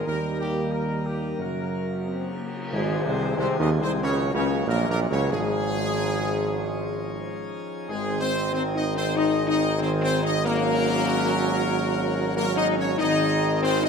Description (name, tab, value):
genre	classical, ceremonial fanfare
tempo	94 BPM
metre	4/4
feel	straight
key	Ab mixolydian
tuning	A4 = 439 Hz
part	clear trumpet section	melody	0.0-13.9 s	G4 to Eb5	-30 LUFS	equal	none
part	mellow French horn section	sustained chords	0.0-13.9 s	Ab3 to Bb4	-28 LUFS	left 6 dB	none
part	pipe organ, plenum	sustained chords	0.0-13.9 s	Db3 to Bb4	-31 LUFS	left 3 dB	none
part	clear tuba	bass	0.0-13.9 s	Ab1 to Gb2	-27 LUFS	right 4 dB	none
part	clear trombone section	sustained chords	0.1-13.9 s	Ab2 to Db4	-30 LUFS	right 3 dB	none
part	cymbal swell and tam-tam	percussion	0.1-5.3 s	none	-36 LUFS	left 3 dB	none
room	moderate scoring stage reverb, RT60 1.8 s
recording	none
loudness	-22 LUFS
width	side -6 dB against mid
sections	0.0-2.7 A section; 2.7-13.9 B section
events	band accent 2.7-3.4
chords	0.1 Eb; 1.4 Gb; 2.7 Ab; 4.0 Gb/Db; 5.3 Dbadd9/Ab; 7.9 Ab; 10.4 Gb/Ab; 13.0 Ab